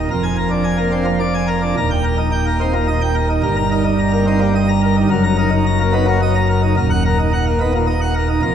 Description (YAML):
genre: classical, organ toccata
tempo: 108 BPM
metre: 3/4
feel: straight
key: Eb major, Eb minor from 5.1 s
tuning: A4 = 439 Hz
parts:
  - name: pipe organ, plenum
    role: solo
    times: 0.0-8.5 s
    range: Eb1 to Bb5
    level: -14 LUFS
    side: equal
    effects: none
room: wet church reverb, RT60 2.7 s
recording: none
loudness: -14 LUFS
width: side -8 dB against mid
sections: 0.0-8.5 A section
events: none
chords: 0.1 Bb7/F; 1.8 Eb; 3.4 Eb/G; 5.1 Ebm/Gb; 6.8 Ebm